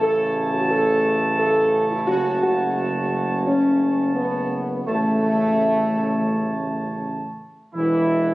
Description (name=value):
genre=classical, ceremonial fanfare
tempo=86 BPM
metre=4/4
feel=straight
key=A major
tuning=A4 = 439 Hz
part: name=dark trumpet section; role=melody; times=0.0-8.3 s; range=E4 to A5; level=-26 LUFS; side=right 1 dB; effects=none
part: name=dark trombone section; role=sustained chords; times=0.0-8.3 s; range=C#3 to A3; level=-27 LUFS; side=right 1 dB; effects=none
part: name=mellow French horn section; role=sustained chords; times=0.0-8.3 s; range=E3 to A4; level=-21 LUFS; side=equal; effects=none
part: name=warm tuba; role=bass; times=0.0-8.3 s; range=E1 to A1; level=-26 LUFS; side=right 1 dB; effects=none
room=moderate recital hall reverb, RT60 1.4 s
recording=recorded on a phone in the room, studio reverb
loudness=-18 LUFS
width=side -18 dB against mid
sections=0.0-7.8 A section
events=none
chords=0.0 A; 2.1 F#m; 4.9 A; 7.8 N.C.